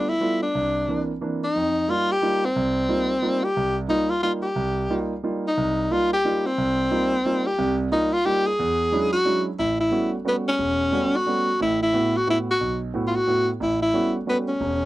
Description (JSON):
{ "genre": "jazz", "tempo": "179 BPM", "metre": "3/4", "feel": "swing 62% on 8ths", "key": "A mixolydian from 9.6 s", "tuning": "A4 = 440 Hz", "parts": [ { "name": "clear tenor saxophone", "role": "melody", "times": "0.0-14.9 s", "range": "B3 to Ab4", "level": "-22 LUFS", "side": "left 1 dB", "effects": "none" }, { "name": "warm concert grand piano", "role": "accompaniment", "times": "0.0-14.9 s", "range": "E1 to F#4", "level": "-26 LUFS", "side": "right 2 dB", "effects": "none" } ], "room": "little or no reverb", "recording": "dry, close 1970s-style studio recording", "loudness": "-20 LUFS", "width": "side -16 dB against mid", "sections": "0.0-1.6 A section; 1.6-9.6 B section; 9.6-14.9 C section", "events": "none", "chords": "0.0 G9; 0.5 C9; 1.6 F9sus4; 8.6 E13; 9.6 A13; 11.6 Esus2/A; 13.6 A13" }